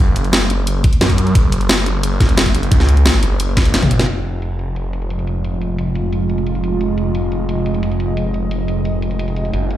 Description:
dark technical drum and bass; 176 BPM; 4/4; straight; F phrygian; A4 = 445 Hz
phased detuned saw bass; bass; 0.0-9.8 s; F1 to Gb2; -17 LUFS; equal; phaser, tube saturation
drum and bass drum kit; drums; 0.2-9.8 s; crash cymbal, hi-hat, snare drum, toms; -18 LUFS; equal; low-pass filter on hats, low-pass filter on snare, low-pass filter on toms, low-pass filter on cymbals
electronic kick drum; drums; 0.8-3.9 s; -14 LUFS; equal
dark analog pad; sustained chords; 5.1-9.8 s; Ab3 to Eb5; -22 LUFS; right 2 dB; chorus, sidechain pumping
light reverb; played on a big sound system in a bare room, large studio reverb; -14 LUFS; side -13 dB against mid
0.0-4.1 A section; 4.1-9.8 B section
drum fill 3.6-4.1
0.0 Gb5; 4.1 Fm7

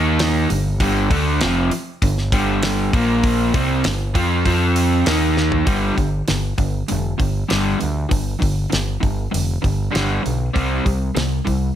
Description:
classic rock; 98 BPM; 4/4; straight; G minor; A4 = 441 Hz
crunchy overdriven guitar; riff; 0.0-11.7 s; F2 to F4; -20 LUFS; equal
growling picked electric bass; bass; 0.0-11.7 s; F1 to F2; -21 LUFS; equal; overdrive
damped 70s drum kit; drums; 0.2-11.6 s; hi-hat, kick drum, snare drum, toms; -22 LUFS; equal
light reverb; -16 LUFS; side -10 dB against mid
0.0-5.7 A section; 5.7-11.8 B section
drum fill 5.4-5.7
0.5 G5; 2.9 Bb5; 3.5 G5; 4.4 F5; 5.1 Eb5; 5.7 G5; 10.6 C5

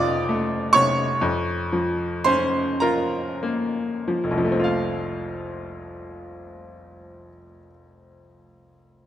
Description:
classical, romantic nocturne for solo piano; 30-46 BPM (dotted quarters); 12/8; rubato; F major; A4 = 440 Hz
bright baby grand piano; solo; 0.0-9.1 s; F1 to Eb6; -21 LUFS; equal
moderate scoring stage reverb, RT60 1.7 s; close, detailed microphones; -20 LUFS; side -11 dB against mid
0.0-4.7 A section; 4.7-9.1 B section
slowing down 0.0-4.7
0.0 F7; 1.2 Bbm/F; 4.7 F

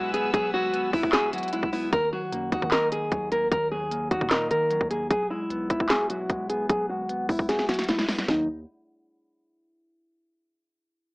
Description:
hip hop, trap; 151 BPM; 4/4; half-time; A4 = 441 Hz
nylon-string guitar; melody; 0.0-8.5 s; Eb4 to Bb4; -25 LUFS; equal; low-pass filter, slapback echo
mellow electric guitar; accompaniment; 0.0-8.5 s; Eb3 to Eb5; -33 LUFS; left 1 dB; low-pass filter
warm symphonic string section; sustained chords; 0.0-1.9 s; B4 to E6; -34 LUFS; left 1 dB
long sustained 808-style bass; bass; 0.0-8.7 s; E1 to Eb3; -40 LUFS; equal
trap drum kit; drums; 0.1-8.4 s; handclaps, hi-hat, kick drum, snare drum, toms; -26 LUFS; equal
light reverb; AM radio sound; -23 LUFS; side -29 dB against mid
0.0-1.9 A section; 1.9-8.3 B section; 8.3-9.9 C section
filter sweep 1.9-8.3; drum fill 7.5-8.3
0.0 Eadd9; 1.9 Ebm; 5.1 Eadd9; 8.3 N.C.

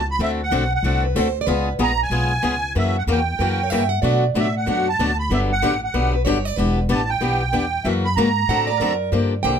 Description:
acoustic string swing (jazz manouche); 188 BPM; 4/4; swing 61% on 8ths; A4 = 442 Hz
musette accordion; melody; 0.0-9.0 s; E5 to B5; -22 LUFS; right 4 dB
upright bass; bass; 0.0-9.6 s; E1 to B2; -22 LUFS; equal
picked swing-style acoustic guitar; accompaniment; 0.2-9.6 s; B2 to A4; -22 LUFS; left 3 dB
picked plugged-in steel-string acoustic guitar; second line; 1.0-9.6 s; A#4 to G5; -25 LUFS; right 4 dB
light reverb; close, detailed microphones; -18 LUFS; side -7 dB against mid
0.0-9.1 A section
0.2 D7; 1.5 C#7; 2.8 F#7b9; 4.0 Bm7; 5.3 Gmaj7; 6.6 Em7; 7.8 F#7; 8.5 D7b13

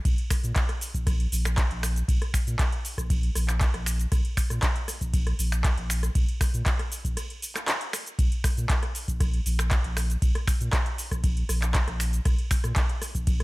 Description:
acid house; 118 BPM; 4/4; straight; A4 = 440 Hz
saturated sub bass; bass; 0.1-13.4 s; Bb1 to Bb2; -28 LUFS; equal; sidechain pumping
booming analog drum machine; drums; 0.1-13.4 s; finger snaps, handclaps, hi-hat, ride cymbal, rim click, shaker; -31 LUFS; equal; overdrive
electronic kick drum; drums; 0.1-13.4 s; -25 LUFS; equal; overdrive
little or no reverb; -24 LUFS; side -21 dB against mid
0.0-13.4 A section
break 7.2-8.2

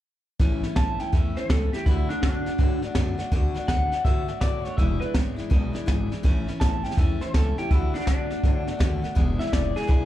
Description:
rockabilly; 164 BPM; 4/4; swing 64% on 8ths; A major; A4 = 440 Hz
picked steel-string acoustic guitar; accompaniment; 0.4-10.1 s; E2 to F#4; -30 LUFS; left 3 dB
upright bass; bass; 0.4-10.1 s; E1 to A2; -26 LUFS; equal
jazz brush drum kit; drums; 0.4-10.0 s; hi-hat, kick drum, snare drum; -24 LUFS; equal
electric guitar through a small old amp; melody; 0.8-10.1 s; D4 to A5; -30 LUFS; equal; slapback echo, analog delay
little or no reverb; live gig heard through the venue's PA, club reverb; -22 LUFS; side -13 dB against mid
0.4-10.1 A section
0.4 A; 1.9 D; 4.8 E7; 6.2 A; 7.7 D; 9.2 E7

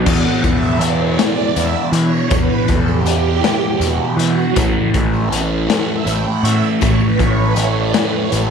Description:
psychedelic rock; 53 BPM (dotted quarters); 6/8; straight; E dorian; A4 = 440 Hz
string machine, violins; sustained chords; 0.0-8.5 s; F#4 to G5; -22 LUFS; right 10 dB; ensemble chorus
fuzz guitar; riff; 0.0-8.5 s; E2 to A3; -18 LUFS; right 1 dB; distortion, phaser
fuzz picked electric bass; bass; 0.0-8.5 s; A1 to E3; -19 LUFS; equal; overdrive
raw garage drum kit; drums; 0.1-8.5 s; crash cymbal, hi-hat, kick drum, snare drum; -19 LUFS; left 4 dB
tambourine; percussion; 0.1-8.5 s; -36 LUFS; left 14 dB
light reverb; 1960s-style stereo with parts hard left and right; -13 LUFS; side -6 dB against mid
0.1-8.5 A section
string machine solo 0.1-8.5
0.1 Em; 4.6 A5

